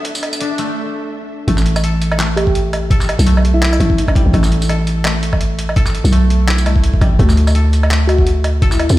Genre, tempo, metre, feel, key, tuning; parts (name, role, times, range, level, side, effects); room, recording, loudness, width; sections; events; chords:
half-time drum and bass; 168 BPM; 4/4; swing 57% on 16ths, half-time; A4 = 440 Hz
rich studio string section; sustained chords; 0.0-1.4 s; D4 to E5; -27 LUFS; equal; sidechain pumping
koto; arpeggios; 0.0-9.0 s; F#3 to A4; -24 LUFS; left 2 dB; dub echo
boom bap sampler-style drum kit; drums; 0.0-9.0 s; handclaps, hi-hat, tambourine, woodblock; -21 LUFS; right 1 dB; overdrive
electronic kick drum; drums; 0.0-8.7 s; -14 LUFS; equal; overdrive, high-pass filter on kick, high-pass filter on room
growling 808-style bass; bass; 1.5-9.0 s; A1 to E2; -14 LUFS; equal
soft struck synth lead; melody; 2.4-4.2, 8.1-9.0 s; E4 to G4; -20 LUFS; left 1 dB; chorus, ping-pong delay
little or no reverb; played on a big sound system in a bare room, stone room reverb; -12 LUFS; side -16 dB against mid
0.0-1.5 A section; 1.5-9.0 B section
build-up 0.0-1.5; filter sweep on koto 0.0-1.5; break 0.8-1.5; drop 1.5-9.0
0.0 D; 1.5 A7(no3); 7.2 D